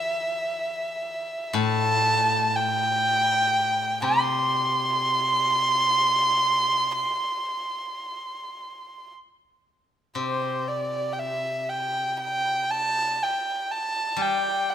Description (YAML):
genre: chinese traditional, Chinese chamber ensemble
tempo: free time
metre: none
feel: none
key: C gong mode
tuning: A4 = 438 Hz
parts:
  - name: dark erhu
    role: melody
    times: 0.0-14.7 s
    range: C5 to C6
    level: -23 LUFS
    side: right 1 dB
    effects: none
  - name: steel-string zither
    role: accompaniment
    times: 0.0-14.7 s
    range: A2 to G3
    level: -30 LUFS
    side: left 4 dB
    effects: none
room: moderate recital hall reverb, RT60 1.5 s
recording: none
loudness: -22 LUFS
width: side -10 dB against mid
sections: 0.0-10.2 A section; 10.2-14.7 B section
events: none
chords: none